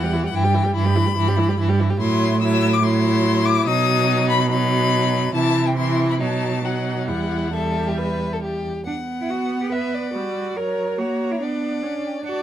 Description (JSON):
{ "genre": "quick classical-period movement for string quartet", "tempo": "142 BPM", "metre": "4/4", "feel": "rubato", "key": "E minor, B minor from 8.9 s", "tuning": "A4 = 445 Hz", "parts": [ { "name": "rich violin", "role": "melody", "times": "0.0-12.4 s", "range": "E5 to E6", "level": "-25 LUFS", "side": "left 7 dB", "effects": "none" }, { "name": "rich violin", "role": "second line", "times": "0.0-12.4 s", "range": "D#4 to F#5", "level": "-25 LUFS", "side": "left 4 dB", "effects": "none" }, { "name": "rich viola", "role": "accompaniment", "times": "0.0-12.4 s", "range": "E3 to D4", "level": "-26 LUFS", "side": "right 2 dB", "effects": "none" }, { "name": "rich cello", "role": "bass", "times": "0.0-12.4 s", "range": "E2 to B4", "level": "-22 LUFS", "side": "right 3 dB", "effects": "none" } ], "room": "little or no reverb", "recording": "close, detailed microphones", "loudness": "-18 LUFS", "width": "side -11 dB against mid", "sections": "0.0-8.9 A section; 8.9-12.4 B section", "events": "none", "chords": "0.3 Em/G; 2.0 F#m7b5/A; 3.7 B; 5.4 C; 6.2 B7; 7.1 Em; 8.9 Bm; 10.6 F#; 11.4 Bm" }